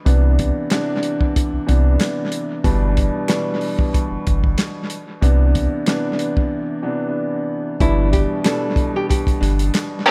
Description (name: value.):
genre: hip hop, boom-bap hip-hop.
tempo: 93 BPM.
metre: 4/4.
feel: swing 56% on 16ths.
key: G major.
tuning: A4 = 440 Hz.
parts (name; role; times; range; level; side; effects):
dark upright piano; accompaniment; 0.1-10.1 s; B2 to D4; -24 LUFS; equal; cassette tape, high-pass filter, low-pass filter, analog delay.
round analog bass; bass; 0.1-9.7 s; G1 to C2; -19 LUFS; equal; none.
warm soul drum kit; drums; 0.1-10.1 s; handclaps, hi-hat, kick drum, snare drum; -23 LUFS; equal; analog delay.
finger snap; percussion; 0.7-9.9 s; none; -40 LUFS; equal; none.
nylon-string guitar; melody; 7.8-9.9 s; D4 to A4; -26 LUFS; equal; high-pass filter, low-pass filter, analog delay.
clear chamber string section; stabs; 10.1 s; E4 to B4; -12 LUFS; equal; high-pass filter, low-pass filter.
room: little or no reverb.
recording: echo-heavy mix.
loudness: -19 LUFS.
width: mono.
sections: 0.0-7.8 A section; 7.8-10.1 B section.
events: break 6.5-7.8.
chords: 0.1 Cmaj9; 2.6 G6; 5.2 Cmaj9; 7.8 G6.